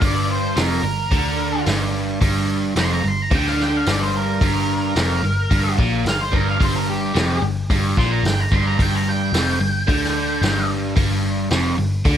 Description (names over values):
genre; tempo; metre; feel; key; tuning
blues rock power trio and southern rock; 110 BPM; 4/4; straight; G minor; A4 = 438 Hz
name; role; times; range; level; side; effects
octave-fuzz lead guitar; melody; 0.0-10.7 s; G4 to C6; -24 LUFS; equal; distortion, digital delay
biting overdriven guitar; riff; 0.0-12.2 s; F2 to D3; -21 LUFS; right 1 dB; none
vintage muted picked electric bass; bass; 0.0-12.2 s; F1 to D2; -23 LUFS; equal; none
vintage drum kit; drums; 0.0-12.2 s; hi-hat, kick drum, snare drum; -23 LUFS; equal; none
room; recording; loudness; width
light reverb; none; -17 LUFS; side -9 dB against mid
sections
0.0-12.2 A section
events
lead electric guitar solo 0.0-12.2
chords
0.0 Gm